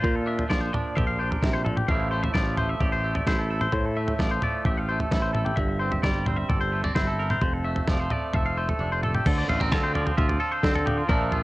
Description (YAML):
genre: math rock and midwest emo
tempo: 130 BPM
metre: 4/4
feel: straight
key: F major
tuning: A4 = 437 Hz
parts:
  - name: twangy electric guitar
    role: accompaniment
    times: 0.0-11.4 s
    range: F2 to Bb4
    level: -30 LUFS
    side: right 3 dB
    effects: none
  - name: twangy electric guitar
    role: arpeggios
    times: 0.0-11.4 s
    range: F4 to F5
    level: -29 LUFS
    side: left 3 dB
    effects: tape echo
  - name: modern bright fingered electric bass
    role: bass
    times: 0.0-11.4 s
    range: F1 to D3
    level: -28 LUFS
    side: equal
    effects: none
  - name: dusty soul sampler-style drum kit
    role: drums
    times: 0.0-11.4 s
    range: crash cymbal, kick drum, snare drum, toms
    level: -26 LUFS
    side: equal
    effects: none
room: light reverb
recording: home recording on cassette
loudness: -22 LUFS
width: side -19 dB against mid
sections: 0.0-9.2 A section; 9.2-11.4 B section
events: kick and snare drop out 8.8-9.2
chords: 0.0 Bb69; 1.9 Fmaj9/A; 5.6 C/G; 7.4 F6; 9.2 Dm7